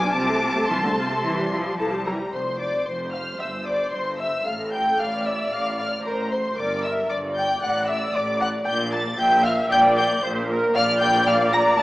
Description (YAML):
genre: quick classical-period movement for string orchestra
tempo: 114 BPM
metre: 4/4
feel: straight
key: unclear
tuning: A4 = 439 Hz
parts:
  - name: rich symphonic violin section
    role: melody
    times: 0.0-11.8 s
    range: A5 to Bb6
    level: -28 LUFS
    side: left 2 dB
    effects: none
  - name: rich chamber violin section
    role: second line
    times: 0.0-11.8 s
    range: A4 to Bb5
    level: -23 LUFS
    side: equal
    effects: none
  - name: clear symphonic viola section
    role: accompaniment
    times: 0.0-11.8 s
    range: E3 to E5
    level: -25 LUFS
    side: equal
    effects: none
  - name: bright symphonic double bass section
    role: bass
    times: 0.0-11.8 s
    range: E1 to C2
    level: -32 LUFS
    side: equal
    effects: none
  - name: clear symphonic cello section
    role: bass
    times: 0.0-11.8 s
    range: E2 to G3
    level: -30 LUFS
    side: equal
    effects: none
room: moderate recital hall reverb, RT60 1.6 s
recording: small speaker sound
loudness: -20 LUFS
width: side -18 dB against mid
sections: 0.0-2.3 A section; 2.3-11.8 B section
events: none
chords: 0.1 F/C; 1.2 C; 2.3 F5; 3.4 C5/G; 4.5 Bbmaj9#11/A; 6.6 Gm; 7.6 D5/A; 8.7 Bb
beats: | 0.14 0.69 1.24 1.78 | 2.33 2.87 3.40 3.92 | 4.46 4.99 5.52 6.05 | 6.57 7.10 7.62 8.15 | 8.67 9.19 9.71 10.23 | 10.75 11.27 11.79